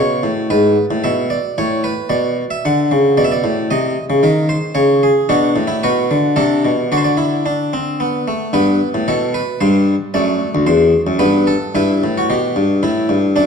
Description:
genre	classical, baroque-style 3-part fugue for harpsichord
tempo	112 BPM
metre	3/4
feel	straight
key	G major from 5.3 s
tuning	A4 = 440 Hz
part	harpsichord	solo	0.0-13.5 s	D2 to F#5	-13 LUFS	equal	none
room	wet recital hall reverb, RT60 1.7 s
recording	dark, warm production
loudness	-13 LUFS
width	side -6 dB against mid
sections	0.0-8.5 A section; 8.5-11.7 B section; 11.7-13.5 A section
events	none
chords	0.0 Aadd9; 0.5 E7/G#; 1.6 A; 2.1 Bm; 3.2 Asus24; 3.7 Cm7; 4.8 C#5; 5.3 Bm; 6.4 Am/C; 6.9 D; 8.5 G; 9.6 Gsus4; 10.1 D7; 11.2 G; 11.7 Em/G; 12.8 A5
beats	| 0.52 1.05 1.58 | 2.12 2.65 3.18 | 3.71 4.24 4.77 | 5.30 5.83 6.37 | 6.91 7.46 8.01 | 8.55 9.09 9.62 | 10.14 10.68 11.21 | 11.75 12.29 12.82 | 13.35

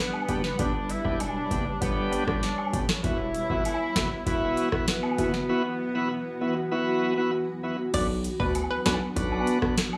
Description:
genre	dancehall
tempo	98 BPM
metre	4/4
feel	straight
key	unclear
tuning	A4 = 440 Hz
part	mellow horn section	second line	0.0-7.6 s	B3 to E4	-33 LUFS	equal	tape echo
part	granular cloud pad	sustained chords	0.1-10.0 s	E3 to C#5	-35 LUFS	equal	built-in reverb, sidechain pumping
part	woodblock and cabasa	percussion	0.1-10.0 s	none	-39 LUFS	equal	none
part	bright tonewheel organ	accompaniment	0.3-9.8 s	B3 to G4	-31 LUFS	equal	overdrive, slow rotary speaker, sidechain pumping
part	hard-hitting 808-style bass	bass	0.3-9.4 s	E1 to D2	-35 LUFS	equal	none
part	booming analog drum machine	drums	0.3-9.9 s	crash cymbal, hi-hat, kick drum, rim click, snare drum	-31 LUFS	equal	none
part	hollow square pluck	melody	7.9-9.0 s	B4 to D5	-35 LUFS	equal	chorus, tape echo
room	light reverb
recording	dry, gritty hardware recording, transformer saturation, small room ambience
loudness	-27 LUFS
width	mono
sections	0.0-7.9 A section; 7.9-10.0 B section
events	none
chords	0.0 G; 3.0 Esus2; 7.9 Bm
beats	| 0.59 1.21 1.82 2.43 | 3.04 3.65 4.27 4.88 | 5.49 6.10 6.71 7.33 | 7.94 8.55 9.16 9.78

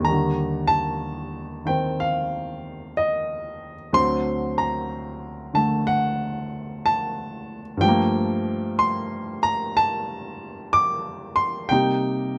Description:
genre	solo jazz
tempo	62 BPM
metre	4/4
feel	swing 66% on 8ths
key	unclear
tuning	A4 = 440 Hz
part	warm baby grand piano	solo	0.0-12.4 s	D2 to D6	-24 LUFS	equal	none
room	moderate studio reverb, RT60 0.5 s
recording	none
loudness	-24 LUFS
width	mono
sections	0.0-12.4 A section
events	none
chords	0.1 Ebmaj7; 3.9 D7; 7.8 Gm9; 11.7 Cm7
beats	| 0.06 1.03 2.00 2.97 | 3.94 4.91 5.88 6.85 | 7.82 8.79 9.76 10.73 | 11.70

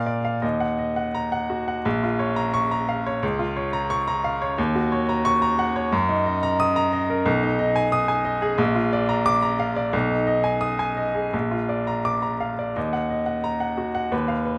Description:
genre	classical, virtuoso piano study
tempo	82-91 BPM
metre	2/4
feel	rubato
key	Bb minor, Eb minor from 7.3 s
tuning	A4 = 440 Hz
part	clear baby grand piano	solo	0.0-14.6 s	Bb1 to Eb6	-23 LUFS	equal	none
room	moderate large studio reverb, RT60 1.4 s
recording	none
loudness	-23 LUFS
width	mono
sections	0.0-1.9 A section; 1.9-12.8 B section; 12.8-14.6 A section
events	none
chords	0.4 Ebm; 1.9 Bbm; 3.2 Bbm/Db; 4.6 Ebm7; 5.9 Ebm/Gb; 7.3 Abm/Cb; 8.6 Bb; 9.9 Abm/Cb; 11.3 Bb; 12.8 Ebm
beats	| 0.43 1.15 | 1.85 2.54 | 3.22 3.90 | 4.58 5.25 | 5.92 6.59 | 7.26 7.93 | 8.59 9.26 | 9.93 10.62 | 11.33 12.05 | 12.76 13.44 | 14.12

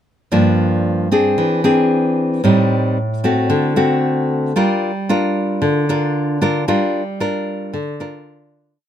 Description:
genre	bossa nova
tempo	113 BPM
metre	4/4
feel	straight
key	G minor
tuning	A4 = 440 Hz
part	nylon-string guitar	solo	0.3-8.8 s	G2 to Bb4	-15 LUFS	equal	none
room	little or no reverb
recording	close, detailed microphones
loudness	-15 LUFS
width	side -10 dB against mid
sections	0.3-8.8 A section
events	fade-out 6.7-8.8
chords	0.3 Gm7; 1.4 Eaug7; 2.4 Am7b5; 3.5 D7; 4.6 Gm7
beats	| 0.33 0.85 1.39 1.91 | 2.44 2.97 3.50 4.03 | 4.56 5.09 5.62 6.15 | 6.68 7.21 7.74 8.27

